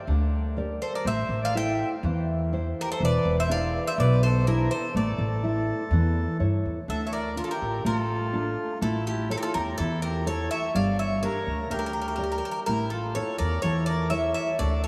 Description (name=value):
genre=greek folk, Greek bouzouki band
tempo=124 BPM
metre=4/4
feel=straight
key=D harmonic minor from 6.9 s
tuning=A4 = 439 Hz
part: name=nylon-string guitar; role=accompaniment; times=0.1-14.9 s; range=B2 to E5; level=-32 LUFS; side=equal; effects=none
part: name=upright bass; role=bass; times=0.1-14.9 s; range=E1 to G2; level=-30 LUFS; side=equal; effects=none
part: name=Greek bouzouki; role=melody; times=0.8-14.9 s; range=G4 to G5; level=-33 LUFS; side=equal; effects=none
part: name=accordion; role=second line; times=0.8-14.9 s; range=E4 to E5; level=-35 LUFS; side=equal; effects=none
room=wet cathedral reverb, RT60 4.9 s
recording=in a vast, echoing space, small room ambience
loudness=-26 LUFS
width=mono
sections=0.0-6.9 A section; 6.9-14.9 B section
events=none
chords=0.0 Gm; 1.1 Am; 3.0 E7; 5.0 A; 6.9 Dm; 8.8 A; 10.8 Gm; 12.7 A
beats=0.09 0.57 | 1.06 1.55 2.04 2.52 | 3.01 3.50 3.98 4.47 | 4.95 5.44 5.92 6.41 | 6.89 7.37 7.86 8.34 | 8.82 9.31 9.79 10.27 | 10.75 11.24 11.72 12.20 | 12.68 13.16 13.64 14.12 | 14.60